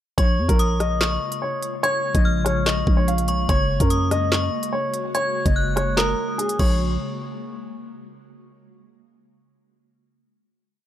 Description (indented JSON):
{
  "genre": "hip hop, drill",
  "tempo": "145 BPM",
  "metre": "4/4",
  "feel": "half-time",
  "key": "Bb minor",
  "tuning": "A4 = 437 Hz",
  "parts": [
    { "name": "dark upright piano", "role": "melody", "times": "0.2-6.8 s", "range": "Ab4 to F5", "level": "-25 LUFS", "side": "left 1 dB", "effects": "analog delay" },
    { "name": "metallic FM bell", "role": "second line", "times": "0.2-6.8 s", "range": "Db6 to Ab6", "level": "-28 LUFS", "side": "left 2 dB", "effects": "chorus, analog delay" },
    { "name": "ethereal airy pad", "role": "sustained chords", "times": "1.0-6.8 s", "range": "Db3 to Gb4", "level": "-31 LUFS", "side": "left 1 dB", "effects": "ensemble chorus, built-in reverb, phaser" },
    { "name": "growling 808-style bass", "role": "bass", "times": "0.2-7.0 s", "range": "Gb1 to Gb2", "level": "-22 LUFS", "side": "equal", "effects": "none" },
    { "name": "drill drum kit", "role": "drums", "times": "0.2-6.7 s", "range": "crash cymbal, handclaps, hi-hat, kick drum, rim click, snare drum", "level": "-22 LUFS", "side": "equal", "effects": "none" }
  ],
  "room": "light reverb",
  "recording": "echo-heavy mix",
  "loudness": "-19 LUFS",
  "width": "side -12 dB against mid",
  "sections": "0.2-6.8 hook; 6.8-8.5 final hit",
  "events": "none",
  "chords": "0.2 Bbm7; 3.5 Gbadd9; 6.6 Bbm7; 6.8 N.C."
}